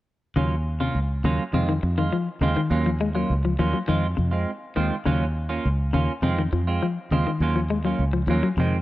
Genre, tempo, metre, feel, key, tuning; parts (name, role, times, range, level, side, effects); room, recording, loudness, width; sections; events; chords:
afrobeat; 102 BPM; 4/4; straight; Eb dorian; A4 = 440 Hz
semi-hollow electric guitar; arpeggios; 0.4-8.7 s; C3 to Ab3; -26 LUFS; left 4 dB
semi-hollow electric guitar; stabs; 0.4-8.8 s; Eb3 to F4; -27 LUFS; right 4 dB; lush chorus
fingered electric bass; bass; 0.4-8.8 s; Db2 to F2; -24 LUFS; equal
light reverb, digital ambience; -21 LUFS; side -16 dB against mid
0.4-8.8 A section
0.4 Ebm9; 1.5 Fm7; 2.7 Ebm9; 3.9 Fm7; 5.1 Ebm9; 6.2 Fm7; 7.4 Ebm9